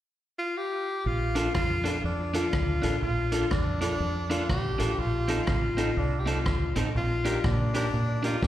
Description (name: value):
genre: ska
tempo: 122 BPM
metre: 4/4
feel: swing 62% on 8ths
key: Bb major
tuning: A4 = 436 Hz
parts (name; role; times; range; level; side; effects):
- breathy tenor saxophone; melody; 0.4-8.5 s; D4 to G4; -30 LUFS; left 1 dB; tape echo, slapback echo
- deep dub fingered electric bass; bass; 1.1-8.5 s; A1 to Bb2; -29 LUFS; equal; none
- electric guitar at the edge of break-up; accompaniment; 1.4-8.4 s; C4 to Bb4; -33 LUFS; right 2 dB; slapback echo
- dark upright piano; stabs; 1.4-8.3 s; Bb3 to A4; -37 LUFS; left 4 dB; slapback echo
- street-band drum kit; drums; 1.4-8.5 s; hi-hat, kick drum, rim click, snare drum; -32 LUFS; equal; tape echo
room: light reverb, small room ambience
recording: live gig heard through the venue's PA, recital hall reverb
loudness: -25 LUFS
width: side -12 dB against mid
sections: 0.0-1.1 A section; 1.1-8.5 B section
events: none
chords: 0.0 N.C.; 1.1 Bbmaj7; 5.0 F7; 7.0 Ebmaj7/Bb